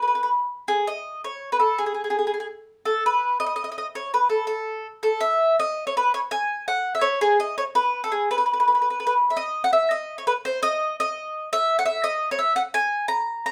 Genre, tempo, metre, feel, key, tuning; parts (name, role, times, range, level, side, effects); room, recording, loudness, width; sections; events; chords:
italian folk; 111 BPM (dotted quarters); 6/8; straight; A4 = 439 Hz
mandolin; solo; 0.0-13.5 s; G#4 to A#5; -23 LUFS; equal
moderate studio reverb, RT60 0.6 s; heard from further back in the room; -23 LUFS; mono
0.7-9.4 A section; 9.4-13.5 B section